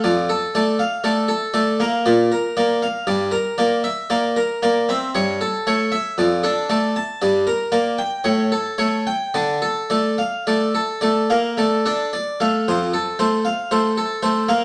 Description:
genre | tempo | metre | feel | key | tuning
classical, baroque-style suite movement for harpsichord | 53-60 BPM | 3/4 | rubato | D minor | A4 = 440 Hz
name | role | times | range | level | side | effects
harpsichord | solo | 0.0-14.6 s | F2 to A5 | -20 LUFS | equal | none
room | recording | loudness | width
wet stone room reverb, RT60 0.9 s | none | -20 LUFS | mono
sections
0.0-12.7 A section; 12.7-14.6 A section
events
none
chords
0.0 Dm/F; 2.1 Bb; 3.1 Em7b5/G; 5.1 A7/G; 6.2 Dm/F; 7.2 Gm; 8.2 A7; 9.3 Dm; 12.7 F

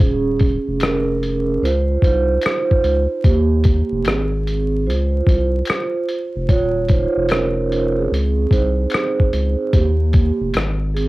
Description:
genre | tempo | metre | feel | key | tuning
lo-fi hip hop | 74 BPM | 4/4 | swing 66% on 16ths | unclear | A4 = 440 Hz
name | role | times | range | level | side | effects
vibraphone with soft mallets | accompaniment | 0.0-11.1 s | Bb3 to Db5 | -19 LUFS | right 3 dB | cassette tape
saturated sub bass | bass | 0.0-11.1 s | Eb1 to Eb2 | -20 LUFS | equal | none
lo-fi sampler-style drum kit | drums | 0.0-11.1 s | hi-hat, kick drum, rim click | -17 LUFS | equal | none
finger snaps | percussion | 0.8-10.8 s | none | -32 LUFS | left 9 dB | none
room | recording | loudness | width
light reverb | home recording on cassette, vinyl crackle | -15 LUFS | side -19 dB against mid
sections
0.0-11.1 A section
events
vibraphone solo 0.0-11.1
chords
0.0 Ebsus2; 1.6 Dbmaj7; 3.2 Ebadd9; 4.1 Ab; 4.9 Dbmaj7; 6.5 Ebsus2; 8.1 Abadd11/C; 9.7 Ebadd9; 10.5 Ab

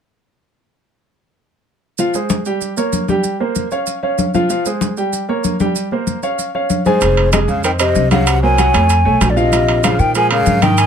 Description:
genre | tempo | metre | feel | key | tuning
Afro-Cuban jazz | 191 BPM | 4/4 | straight | F minor | A4 = 439 Hz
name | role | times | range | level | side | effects
warm upright piano | accompaniment | 2.0-10.9 s | Eb3 to Ab5 | -18 LUFS | right 2 dB | none
congas | percussion | 2.0-10.9 s | none | -20 LUFS | left 3 dB | none
maracas | percussion | 2.0-10.9 s | none | -27 LUFS | right 8 dB | none
mellow hollow concert flute | melody | 6.9-10.9 s | C5 to Ab5 | -16 LUFS | left 2 dB | none
growling tenor saxophone | second line | 6.9-10.9 s | Ab2 to Gb3 | -21 LUFS | right 5 dB | none
upright bass | bass | 7.0-10.9 s | F1 to Bb2 | -16 LUFS | equal | none
timbales | percussion | 7.0-10.9 s | none | -21 LUFS | right 6 dB | none
room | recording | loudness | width
light reverb | close, detailed microphones | -13 LUFS | side -8 dB against mid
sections
2.0-7.0 A section; 7.0-10.9 B section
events
none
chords
2.0 Fm; 2.6 Gdim; 3.2 C5; 3.9 Db; 4.5 Fm; 5.1 Gdim; 5.8 C5; 6.4 Dbmaj7; 7.0 Fm7; 8.3 Gbmaj9#11/C; 8.9 Faug; 9.5 Bbm11

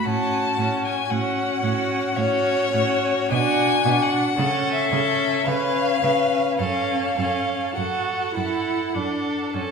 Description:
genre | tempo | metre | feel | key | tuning
classical, slow romantic movement for string quartet | 50-58 BPM | 3/4 | rubato | F# minor | A4 = 440 Hz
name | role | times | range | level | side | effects
rich violin | melody | 0.0-9.5 s | C#5 to A5 | -24 LUFS | left 4 dB | none
rich violin | second line | 0.0-9.7 s | F#4 to B4 | -26 LUFS | equal | none
rich viola | accompaniment | 0.0-9.7 s | C#4 to F#4 | -25 LUFS | right 2 dB | none
rich cello | bass | 0.1-9.6 s | F#2 to C#3 | -29 LUFS | right 4 dB | none
room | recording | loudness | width
wet recital hall reverb, RT60 1.6 s | recorded in a church or concert hall | -20 LUFS | side -5 dB against mid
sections
0.0-9.7 A section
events
none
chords
0.1 F#m/A; 3.3 G#7(b5, no3); 4.4 A6/C#; 6.6 F#m

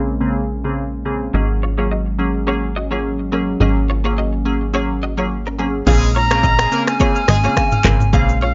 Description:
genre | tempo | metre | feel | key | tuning
afrobeats | 106 BPM | 4/4 | swing 55% on 16ths | unclear | A4 = 439 Hz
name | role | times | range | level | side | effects
glassy wavetable pluck | accompaniment | 0.0-8.3 s | Db3 to Ab4 | -24 LUFS | equal | chorus, low-pass filter
hollow soft pad | sustained chords | 0.0-8.5 s | Gb3 to Db4 | -29 LUFS | equal | chorus, low-pass filter
plucky analog bass | bass | 0.0-8.5 s | Ab1 to Bb1 | -22 LUFS | equal | none
direct-recorded clean electric guitar | riff | 1.3-8.5 s | C4 to F5 | -28 LUFS | equal | ensemble chorus, low-pass filter
clear horn section | second line | 5.9-7.4 s | Ab3 to Bb4 | -28 LUFS | equal | none
afro-pop drum kit | drums | 5.9-8.4 s | crash cymbal, finger snaps, handclaps, hi-hat, kick drum, rim click, shaker, toms | -20 LUFS | equal | vintage 12-bit sampler grit
agogo bells and woodblock | percussion | 5.9-8.5 s | none | -30 LUFS | equal | none
breathy silver concert flute | melody | 6.2-8.5 s | F5 to Bb5 | -21 LUFS | equal | none
room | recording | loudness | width
little or no reverb | nothing above 7.6 kHz | -17 LUFS | mono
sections
0.0-5.9 A section; 5.9-8.5 B section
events
filter sweep 0.0-5.9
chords
0.0 Bbm9; 1.3 Ab9sus4

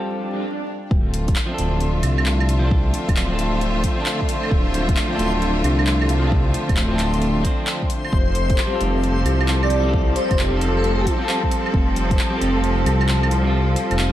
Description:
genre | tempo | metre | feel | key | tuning
future garage | 133 BPM | 4/4 | swing 65% on 16ths | D minor | A4 = 442 Hz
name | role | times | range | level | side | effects
clean electric guitar | accompaniment | 0.0-14.1 s | F3 to C5 | -27 LUFS | right 1 dB | sidechain pumping, tape echo
clear studio string section | sustained chords | 0.0-14.1 s | D3 to E5 | -24 LUFS | equal | sidechain pumping
swell | sound effects | 0.2-0.9 s | none | -30 LUFS | right 3 dB | none
backwards swelling texture | texture | 0.0-14.1 s | C5 to G5 | -32 LUFS | left 3 dB | built-in reverb
dark detuned saw bass | bass | 0.9-14.1 s | D1 to C2 | -20 LUFS | equal | sidechain pumping
electronic kick drum | drums | 0.9-12.2 s | none | -21 LUFS | equal | small room ambience
deep house drum kit | drums | 1.1-14.1 s | claves, handclaps, hi-hat | -27 LUFS | right 1 dB | small room ambience
airy dreamy lead | melody | 9.6-11.1 s | A4 to D5 | -24 LUFS | equal | chorus, ping-pong delay
room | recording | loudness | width
moderate plate reverb, RT60 1.1 s, digital ambience | dreamy mix soaked in reverb, vinyl crackle | -17 LUFS | side -13 dB against mid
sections
0.9-14.1 A section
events
swell 0.2-0.9; kick drops out 13.5-14.1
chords
0.0 Fadd9; 0.9 Dm7; 8.1 Fadd9

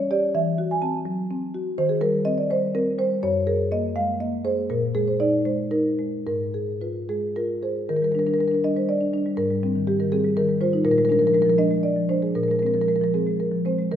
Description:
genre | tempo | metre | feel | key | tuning
classical, contemporary piece for solo marimba | 108-127 BPM | 3/4 | rubato | Eb major | A4 = 439 Hz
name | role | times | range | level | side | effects
marimba with soft mallets | solo | 0.0-14.0 s | Gb2 to A5 | -20 LUFS | equal | none
room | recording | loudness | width
wet recital hall reverb, RT60 1.6 s | none | -20 LUFS | side -9 dB against mid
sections
0.0-7.9 A section; 7.9-14.0 B section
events
none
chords
0.3 F#m7b5/E; 1.8 Eb6; 3.2 Gbadd9; 4.7 Bb7sus4; 6.3 Abm6; 7.9 Ebmaj7; 9.4 Abmaj9; 10.4 Ebadd9; 10.8 Bb7; 12.3 Bbsus2

